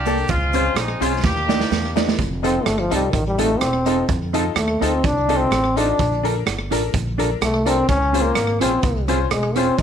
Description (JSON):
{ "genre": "ska", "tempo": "126 BPM", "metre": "4/4", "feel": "straight", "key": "F mixolydian", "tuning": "A4 = 438 Hz", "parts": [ { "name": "clear horn section", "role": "melody", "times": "0.0-2.1 s", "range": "Ab3 to G4", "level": "-23 LUFS", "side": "equal", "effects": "none" }, { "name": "upright bass", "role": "bass", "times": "0.0-9.8 s", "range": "E1 to F2", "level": "-24 LUFS", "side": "equal", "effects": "none" }, { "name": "mellow electric guitar", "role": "accompaniment", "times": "0.1-9.7 s", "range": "Bb3 to A4", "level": "-26 LUFS", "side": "right 13 dB", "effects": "none" }, { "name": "bright upright piano", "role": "stabs", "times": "0.1-9.7 s", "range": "Bb3 to D5", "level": "-25 LUFS", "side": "left 13 dB", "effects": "none" }, { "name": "raw garage drum kit", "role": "drums", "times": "0.1-9.8 s", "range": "hi-hat, kick drum, rim click, snare drum", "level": "-24 LUFS", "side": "right 4 dB", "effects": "slapback echo" }, { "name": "cabasa", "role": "percussion", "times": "0.1-2.1 s", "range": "none", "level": "-44 LUFS", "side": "right 11 dB", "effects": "none" }, { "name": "warm trombone", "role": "melody", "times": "2.4-9.8 s", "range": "Eb3 to Eb4", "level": "-20 LUFS", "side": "left 1 dB", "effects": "slapback echo" } ], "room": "light reverb, studio reverb", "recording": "1960s-style stereo with parts hard left and right", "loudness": "-17 LUFS", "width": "side -8 dB against mid", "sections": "0.0-2.2 A section; 2.2-9.8 B section", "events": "drum fill 1.2-2.2; trombone solo 2.2-9.8", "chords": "0.3 Dbmaj7; 1.2 Ebmaj7; 2.2 F7; 6.0 Bbmaj7; 7.9 Dbmaj7" }